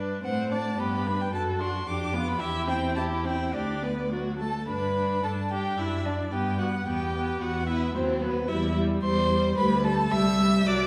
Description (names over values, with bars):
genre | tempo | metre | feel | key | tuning
quick classical-period movement for string quartet | 110 BPM | 2/4 | straight | G major | A4 = 439 Hz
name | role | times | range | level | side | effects
warm violin | second line | 0.0-10.9 s | B3 to E5 | -33 LUFS | equal | none
rich viola | accompaniment | 0.0-10.9 s | F#3 to F#4 | -32 LUFS | equal | none
warm cello | bass | 0.0-10.9 s | C2 to A2 | -32 LUFS | equal | none
warm violin | melody | 0.2-10.9 s | B4 to E6 | -34 LUFS | equal | none
room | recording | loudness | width
wet recital hall reverb, RT60 1.4 s | recorded in a church or concert hall | -27 LUFS | mono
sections
0.0-4.7 A section; 4.7-10.9 B section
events
none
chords
0.2 D7/A; 0.8 G; 1.3 D/F#; 1.9 G7/F; 2.4 C/E; 3.5 G/D; 4.1 D; 4.7 G; 5.8 D/F#; 6.3 G; 6.9 Em; 8.0 B/D#; 8.5 Em; 9.6 G/D; 10.1 C